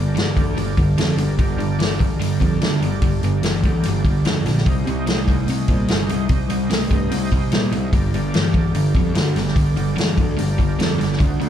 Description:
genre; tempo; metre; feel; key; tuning
blues rock power trio and southern rock; 147 BPM; 4/4; straight; G minor; A4 = 440 Hz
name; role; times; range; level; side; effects
overdriven tonewheel organ; sustained chords; 0.0-11.5 s; D4 to Eb5; -31 LUFS; right 4 dB; chorus vibrato, slow rotary speaker
crunchy overdriven guitar; riff; 0.0-11.5 s; G2 to A3; -22 LUFS; equal; none
fuzz picked electric bass; bass; 0.0-11.5 s; G1 to Bb2; -22 LUFS; equal; overdrive
vintage drum kit; drums; 0.2-11.5 s; hi-hat, kick drum, snare drum; -20 LUFS; equal; none
room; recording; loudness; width
light reverb; live gig heard through the venue's PA, club reverb; -16 LUFS; side -10 dB against mid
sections
0.0-11.5 A section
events
none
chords
0.0 Gm; 4.7 Cm; 7.9 Gm

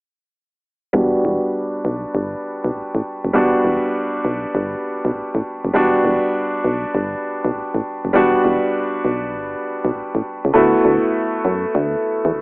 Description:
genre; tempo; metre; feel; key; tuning
R&B, new jack swing; 100 BPM; 4/4; swing 66% on 16ths; E minor; A4 = 440 Hz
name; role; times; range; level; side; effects
clear baby grand piano; accompaniment; 0.9-12.4 s; G3 to F#4; -18 LUFS; equal; low-pass filter
solid FM bass; bass; 0.9-12.4 s; E1 to F#2; -20 LUFS; equal; none
room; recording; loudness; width
light reverb; telephone sound; -17 LUFS; side -28 dB against mid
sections
0.9-5.7 A section; 5.7-12.4 B section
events
filter sweep on grand piano 0.9-5.7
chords
0.9 Em9; 10.5 D69

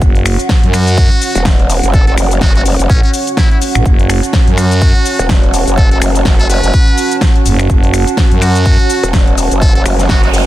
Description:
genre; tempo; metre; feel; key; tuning
bass house; 125 BPM; 4/4; swing 57% on 16ths; F# minor; A4 = 437 Hz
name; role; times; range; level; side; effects
dark analog pad; sustained chords; 0.0-10.5 s; C#4 to A5; -20 LUFS; right 2 dB; wide subtle chorus, sidechain pumping
growling FM bass; bass; 0.0-8.8 s; F#1 to F#2; -12 LUFS; equal; tube saturation, sidechain pumping
big-room dance drum kit; drums; 0.0-10.4 s; finger snaps, hi-hat, shaker, snare drum; -18 LUFS; left 1 dB; soft clipping on snare
electronic kick drum; drums; 0.0-10.2 s; none; -10 LUFS; equal; none
warbly tape-like pad; texture; 0.0-10.5 s; F#4 to F#5; -21 LUFS; right 4 dB; chorus, built-in reverb, sidechain pumping
trumpet with metal mute; melody; 0.7-10.3 s; C#4 to B4; -21 LUFS; equal; vintage 12-bit sampler grit, dub echo
growl bass; bass; 1.4-10.5 s; E1 to F#1; -14 LUFS; equal; chorus, sidechain pumping
noise sweep; sound effects; 9.9-10.5 s; none; -22 LUFS; right 5 dB; none
room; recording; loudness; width
little or no reverb; dense, heavily limited modern master; -8 LUFS; side -14 dB against mid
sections
0.0-10.5 A section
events
noise sweep 9.9-10.5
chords
0.0 F#5

